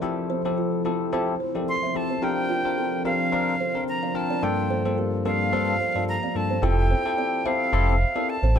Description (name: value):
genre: afrobeats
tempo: 109 BPM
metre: 4/4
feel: swing 55% on 16ths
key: F major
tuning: A4 = 440 Hz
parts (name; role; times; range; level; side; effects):
- bell-like tine electric piano; accompaniment; 0.0-8.6 s; G2 to Bb4; -27 LUFS; left 5 dB; lush chorus
- deep dark ambient pad; sustained chords; 0.0-6.6 s; F3 to D5; -32 LUFS; right 1 dB; chorus, built-in reverb
- kalimba; riff; 0.3-8.5 s; D4 to F5; -30 LUFS; right 5 dB; digital delay
- breathy bright concert flute; melody; 1.7-8.6 s; F5 to C6; -27 LUFS; right 1 dB; none
- sub bass with octave; bass; 6.6-8.6 s; F1 to A1; -20 LUFS; right 1 dB; none
room: light reverb, small room ambience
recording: dark, warm production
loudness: -22 LUFS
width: side -8 dB against mid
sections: 0.0-6.6 A section; 6.6-8.6 B section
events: none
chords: 0.0 Fmaj7; 2.2 Bbadd9; 6.6 Fmaj7